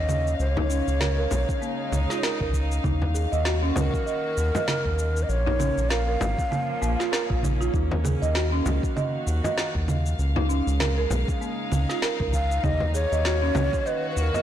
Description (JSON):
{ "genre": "organic downtempo", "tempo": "98 BPM", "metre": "4/4", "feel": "swing 58% on 16ths", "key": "Eb minor", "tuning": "A4 = 440 Hz", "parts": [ { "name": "breathy mellow ney", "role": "melody", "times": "0.0-7.4, 12.3-14.4 s", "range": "Bb4 to F5", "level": "-30 LUFS", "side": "left 1 dB", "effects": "ping-pong delay" }, { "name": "warm studio string section", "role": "sustained chords", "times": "0.0-14.4 s", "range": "Bb2 to F5", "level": "-34 LUFS", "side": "equal", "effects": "sidechain pumping" }, { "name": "round analog bass", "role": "bass", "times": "0.0-14.3 s", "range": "Ab1 to Eb2", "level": "-24 LUFS", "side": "equal", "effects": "tube saturation" }, { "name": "bronze singing bowl", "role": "texture", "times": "0.0-14.4 s", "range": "Db4 to Db5", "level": "-44 LUFS", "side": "equal", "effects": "none" }, { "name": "electronic congas, shaker and snare drum", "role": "drums", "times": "0.1-14.4 s", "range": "none", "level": "-30 LUFS", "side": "right 2 dB", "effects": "none" }, { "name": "folk marimba with medium mallets", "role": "arpeggios", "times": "0.6-14.4 s", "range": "Bb3 to Eb5", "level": "-30 LUFS", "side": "right 3 dB", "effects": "low-pass filter, digital delay" }, { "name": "frame drum", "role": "percussion", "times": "0.6-14.4 s", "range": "none", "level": "-32 LUFS", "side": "left 2 dB", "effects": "none" }, { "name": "electronic kick drum", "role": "drums", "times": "1.5-13.8 s", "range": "none", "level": "-29 LUFS", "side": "equal", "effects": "none" } ], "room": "light reverb", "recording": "blown-out, overdriven recording, overdrive", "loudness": "-22 LUFS", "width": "side -10 dB against mid", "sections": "0.0-14.4 A section", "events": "none", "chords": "0.4 Dbadd9; 2.8 Ebmadd9; 5.3 Bbm; 7.7 Ebmadd9; 10.2 Dbadd9; 12.6 Ebmadd9", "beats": "| 0.39 1.00 1.62 2.23 | 2.84 3.45 4.07 4.68 | 5.29 5.90 6.51 7.13 | 7.74 8.35 8.96 9.58 | 10.19 10.80 11.41 12.03 | 12.64 13.25 13.86" }